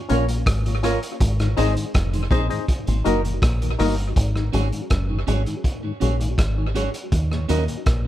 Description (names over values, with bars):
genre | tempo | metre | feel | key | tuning
roots reggae | 81 BPM | 4/4 | straight | Ab mixolydian | A4 = 442 Hz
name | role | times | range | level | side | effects
clean electric guitar | accompaniment | 0.1-7.6 s | Bb3 to Eb5 | -28 LUFS | right 4 dB | tape echo
mellow tonewheel organ | accompaniment | 0.1-8.1 s | Eb2 to F4 | -30 LUFS | left 3 dB | chorus vibrato, slow rotary speaker, analog delay
percussive organ stab | stabs | 0.1-4.0 s | Db4 to Eb5 | -27 LUFS | left 8 dB | chorus
deep dub fingered electric bass | bass | 0.1-8.1 s | F1 to Eb2 | -22 LUFS | equal | none
crunchy breakbeat drum kit | drums | 0.1-8.0 s | hi-hat, kick drum, rim click | -24 LUFS | equal | analog delay
room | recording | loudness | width
little or no reverb | echo-heavy mix | -19 LUFS | side -13 dB against mid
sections
0.0-4.2 A section; 4.2-8.1 B section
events
none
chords
0.0 Bbm; 1.2 Ab; 2.7 Ebm; 4.2 Ab7sus4; 7.1 Ebm7